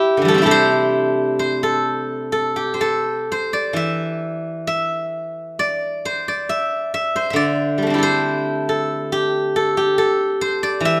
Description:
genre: chinese traditional, Chinese solo plucked strings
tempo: 60-71 BPM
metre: 4/4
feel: rubato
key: A yu mode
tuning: A4 = 439 Hz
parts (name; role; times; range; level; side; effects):
- steel-string zither; solo; 0.0-11.0 s; C3 to E5; -20 LUFS; equal; none
room: moderate recital hall reverb, RT60 1.4 s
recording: none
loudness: -20 LUFS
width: mono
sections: 0.0-3.7 A section; 3.7-11.0 B section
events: none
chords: none

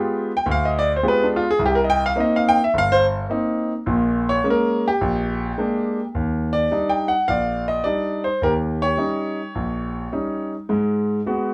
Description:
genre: jazz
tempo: 106 BPM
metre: 4/4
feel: swing 69% on 8ths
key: Eb major from 6.1 s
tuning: A4 = 444 Hz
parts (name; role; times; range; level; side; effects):
- clear concert grand piano; solo; 0.0-11.5 s; G1 to G5; -21 LUFS; equal; none
room: wet studio ambience, RT60 0.5 s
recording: none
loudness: -21 LUFS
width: mono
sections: 0.0-6.1 A section; 6.1-11.5 B section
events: grand piano solo 0.0-6.1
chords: 0.0 G7b9; 1.6 Cm7; 3.9 Bbm7; 5.0 Bb7; 6.1 Ebmaj7; 8.4 Eb7; 10.7 Abm7

